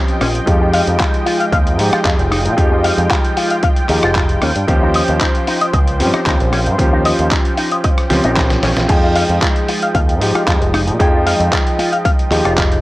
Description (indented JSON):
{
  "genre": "nu-disco, nu disco",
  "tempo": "114 BPM",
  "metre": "4/4",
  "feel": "straight",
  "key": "F minor",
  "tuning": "A4 = 438 Hz",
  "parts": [
    { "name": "warm grand piano", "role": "accompaniment", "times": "0.0-12.8 s", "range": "F3 to G5", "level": "-19 LUFS", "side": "equal", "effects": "low-pass filter, tape echo" },
    { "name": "lush unison pad", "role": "sustained chords", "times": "0.0-12.8 s", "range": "Ab3 to G5", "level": "-22 LUFS", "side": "equal", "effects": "chorus, sidechain pumping" },
    { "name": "dusty soul sampler-style drum kit", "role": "drums", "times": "0.1-12.8 s", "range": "crash cymbal, handclaps, hi-hat, rim click, snare drum", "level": "-21 LUFS", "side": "equal", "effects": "small room ambience" },
    { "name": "electric guitar with an envelope filter", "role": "riff", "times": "0.2-12.6 s", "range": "Db4 to F5", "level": "-20 LUFS", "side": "left 2 dB", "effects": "analog chorus, low-pass filter, tape echo" },
    { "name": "picked electric bass with an envelope filter", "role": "bass", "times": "0.2-12.8 s", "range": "F1 to Bb2", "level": "-17 LUFS", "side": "equal", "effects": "none" },
    { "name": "electronic kick drum", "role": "drums", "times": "0.5-12.7 s", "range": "none", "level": "-16 LUFS", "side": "equal", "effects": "overdrive, small room ambience" }
  ],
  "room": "little or no reverb",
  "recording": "dry, gritty hardware recording, cassette tape",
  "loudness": "-12 LUFS",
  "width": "side -18 dB against mid",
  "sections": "0.0-12.8 A section",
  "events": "drum fill 8.1-8.9",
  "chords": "0.5 Fm9; 4.4 Eb13; 8.9 Fm9"
}